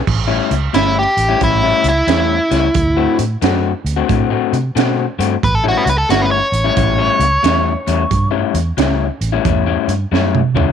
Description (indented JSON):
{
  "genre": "electric blues shuffle",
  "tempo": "90 BPM",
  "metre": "4/4",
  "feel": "swing 65% on 8ths",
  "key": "A mixolydian",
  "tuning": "A4 = 440 Hz",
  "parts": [
    { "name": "vintage muted fingered electric bass", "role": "bass", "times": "0.1-10.7 s", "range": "G1 to C3", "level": "-18 LUFS", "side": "right 1 dB", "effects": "none" },
    { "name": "crunchy breakbeat drum kit", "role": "drums", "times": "0.1-10.7 s", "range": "crash cymbal, hi-hat, kick drum, snare drum, toms", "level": "-20 LUFS", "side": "right 7 dB", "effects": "none" },
    { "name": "electric guitar through a small old amp", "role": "riff", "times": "0.3-10.7 s", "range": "A2 to F#4", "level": "-18 LUFS", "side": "left 15 dB", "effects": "none" },
    { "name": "biting overdriven guitar", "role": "melody", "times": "0.7-8.3 s", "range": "E4 to C#5", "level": "-15 LUFS", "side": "right 1 dB", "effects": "none" }
  ],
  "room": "small room reverb",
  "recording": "1960s-style stereo with parts hard left and right",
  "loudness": "-13 LUFS",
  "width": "side -8 dB against mid",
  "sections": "0.1-10.7 A section",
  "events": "overdriven electric guitar solo 0.1-10.7; drum fill 10.1-10.7",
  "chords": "0.1 A7; 2.7 D7; 5.4 A7"
}